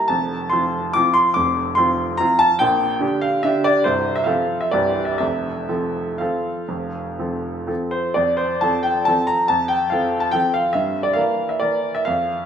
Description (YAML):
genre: classical, piano waltz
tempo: 118-153 BPM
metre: 3/4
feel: rubato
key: F major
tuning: A4 = 435 Hz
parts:
  - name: clear upright piano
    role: solo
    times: 0.0-12.5 s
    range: C1 to D6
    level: -17 LUFS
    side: equal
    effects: none
room: wet recital hall reverb, RT60 1.7 s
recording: minimal, uncompressed stereo recording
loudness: -17 LUFS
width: side -8 dB against mid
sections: 0.0-8.2 A section; 8.2-12.5 B section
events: none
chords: 0.1 F; 2.6 Gm/Bb; 3.9 F/C; 4.7 C; 5.2 F; 10.8 Edim/G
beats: | 0.09 0.52 0.95 | 1.38 1.79 2.21 | 2.62 3.03 3.46 | 3.88 4.29 4.75 | 5.22 5.70 6.21 | 6.70 7.19 7.69 | 8.18 8.63 9.07 | 9.49 9.91 10.35 | 10.76 11.19 11.63 | 12.07